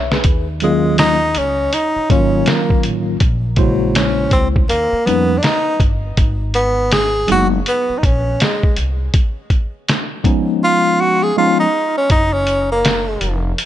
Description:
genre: hip hop, jazz-hop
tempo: 81 BPM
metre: 4/4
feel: swing 62% on 16ths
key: Eb minor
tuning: A4 = 440 Hz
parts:
  - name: tine electric piano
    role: accompaniment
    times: 0.0-11.7 s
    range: C3 to E5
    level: -18 LUFS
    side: equal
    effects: overdrive, medium stereo tremolo
  - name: upright bass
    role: bass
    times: 0.0-13.5 s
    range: F1 to F2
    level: -21 LUFS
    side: equal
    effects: none
  - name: lo-fi sampler-style drum kit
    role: drums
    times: 0.1-13.7 s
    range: hi-hat, kick drum, snare drum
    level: -16 LUFS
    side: equal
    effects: none
  - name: breathy tenor saxophone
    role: melody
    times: 0.6-13.4 s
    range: Gb3 to Ab4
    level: -17 LUFS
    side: equal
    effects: tape echo
room: light reverb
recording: nothing above 10.4 kHz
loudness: -13 LUFS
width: side -12 dB against mid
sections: 0.3-13.7 A section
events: drum fill 0.0; tenor saxophone solo 0.3-13.7; drums muted 10.6-12.1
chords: 0.3 Ebm7; 3.2 Bbm7b5; 4.7 Eb7; 6.2 Abm9; 9.1 Db7; 12.1 Gbmaj7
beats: | 0.25 0.99 1.73 2.47 | 3.21 3.95 4.70 5.44 | 6.18 6.92 7.66 8.40 | 9.14 9.88 10.62 11.36 | 12.10 12.84 13.58

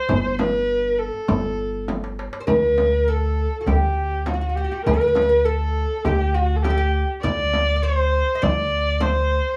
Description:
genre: Turkish makam ensemble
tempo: 101 BPM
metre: 4/4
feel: straight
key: D makam hicaz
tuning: A4 = 439 Hz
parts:
  - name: warm kamancheh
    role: melody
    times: 0.0-9.6 s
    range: F#4-26c to D5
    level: -24 LUFS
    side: equal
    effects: none
  - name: upright bass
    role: bass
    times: 0.1-9.4 s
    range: G1 to D2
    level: -25 LUFS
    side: equal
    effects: none
  - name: darbuka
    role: percussion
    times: 0.1-9.4 s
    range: none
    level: -36 LUFS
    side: equal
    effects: none
  - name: frame drum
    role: percussion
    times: 0.1-9.1 s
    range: none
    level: -27 LUFS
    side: equal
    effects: none
  - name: oud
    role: second line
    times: 2.4-9.6 s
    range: F#4 to Eb5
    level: -30 LUFS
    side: equal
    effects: none
room: moderate studio reverb, RT60 0.6 s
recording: small room ambience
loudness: -21 LUFS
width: mono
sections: 0.0-2.5 A section; 2.5-9.6 B section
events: drum fill 1.9-2.5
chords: none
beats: | 0.10 0.70 1.29 1.89 | 2.49 3.08 3.68 4.27 | 4.87 5.46 6.06 6.65 | 7.24 7.83 8.43 9.02

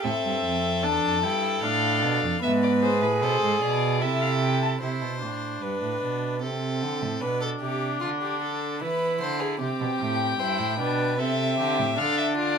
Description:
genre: classical, baroque-style fugue for string quartet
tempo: 76 BPM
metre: 3/4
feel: straight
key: unclear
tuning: A4 = 441 Hz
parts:
  - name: warm violin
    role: melody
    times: 0.0-4.7, 9.6-12.6 s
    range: B4 to A5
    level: -27 LUFS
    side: left 7 dB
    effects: none
  - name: warm violin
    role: second line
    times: 0.0-12.6 s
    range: F4 to C5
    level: -29 LUFS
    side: left 2 dB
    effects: none
  - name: rich viola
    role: accompaniment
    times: 0.0-12.6 s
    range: B3 to G#4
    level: -28 LUFS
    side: right 2 dB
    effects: none
  - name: rich cello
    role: bass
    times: 0.0-12.6 s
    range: E2 to E3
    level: -29 LUFS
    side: right 4 dB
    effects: none
room: moderate studio reverb, RT60 0.6 s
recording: minimal, uncompressed stereo recording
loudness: -23 LUFS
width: side -6 dB against mid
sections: 0.0-4.8 A section; 4.8-12.6 B section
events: none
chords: 0.0 Am; 1.6 Bm7b5/A; 2.4 G#dim; 4.0 Am/C; 4.8 Cmaj7; 6.4 Amadd11; 7.2 Bm7; 8.8 E7; 9.6 C; 11.2 Am/C; 12.0 Dm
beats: | 0.04 0.84 1.63 | 2.43 3.22 4.02 | 4.82 5.62 6.42 | 7.22 8.01 8.81 | 9.60 10.39 11.19 | 11.98

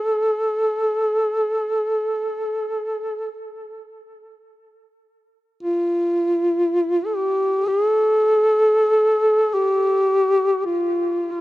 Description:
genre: caucasian folk, Caucasian lament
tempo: free time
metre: none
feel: none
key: unclear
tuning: A4 = 436 Hz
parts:
  - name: dark duduk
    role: solo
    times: 0.0-11.4 s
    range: E4 to A4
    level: -18 LUFS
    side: equal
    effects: tape echo
room: moderate booth ambience, RT60 0.2 s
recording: dry, close 1970s-style studio recording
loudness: -17 LUFS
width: side -17 dB against mid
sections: 0.0-11.4 A section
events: none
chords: none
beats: free time

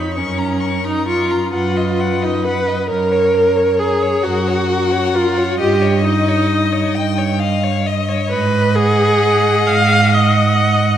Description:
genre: classical, slow romantic movement for string quartet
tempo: 44 BPM (dotted quarters)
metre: 6/8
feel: rubato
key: F# major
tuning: A4 = 442 Hz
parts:
  - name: rich violin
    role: melody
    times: 0.0-11.0 s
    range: A#4 to G5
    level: -24 LUFS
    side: left 9 dB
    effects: none
  - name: rich violin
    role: second line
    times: 0.0-11.0 s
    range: A#4 to C#6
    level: -24 LUFS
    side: left 4 dB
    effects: none
  - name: rich viola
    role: accompaniment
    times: 0.0-11.0 s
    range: C#4 to E#5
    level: -16 LUFS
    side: equal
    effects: none
  - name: rich cello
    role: bass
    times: 0.2-10.9 s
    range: F#2 to G#2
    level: -18 LUFS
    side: right 3 dB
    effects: none
room: wet concert hall reverb, RT60 2.1 s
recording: dark, warm production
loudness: -13 LUFS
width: side -10 dB against mid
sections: 0.0-11.0 A section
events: none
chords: 0.2 F#; 1.5 B/F#; 2.9 F#; 5.6 D#7/G; 8.3 G#5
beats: | 0.17 1.54 | 2.90 4.25 | 5.59 6.95 | 8.30 9.68

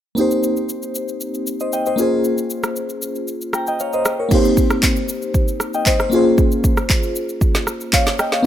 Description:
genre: amapiano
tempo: 116 BPM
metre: 4/4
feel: straight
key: C phrygian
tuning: A4 = 441 Hz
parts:
  - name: crystalline FM electric piano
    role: accompaniment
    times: 0.1-8.5 s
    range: Bb3 to Bb5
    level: -18 LUFS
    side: left 1 dB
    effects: chorus, tremolo
  - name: deep house drum kit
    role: drums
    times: 0.2-8.4 s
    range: crash cymbal, handclaps, kick drum, rim click, shaker, snare drum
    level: -18 LUFS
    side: equal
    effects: none
room: light reverb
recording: none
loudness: -16 LUFS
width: side -11 dB against mid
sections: 0.2-4.3 A section; 4.3-8.5 B section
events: none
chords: 0.2 Cm7; 2.0 Bbm7; 4.3 Cm7; 6.1 Bbm7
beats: | 0.17 0.69 1.21 1.73 | 2.24 2.76 3.28 3.79 | 4.31 4.83 5.35 5.86 | 6.38 6.90 7.42 7.93 | 8.45

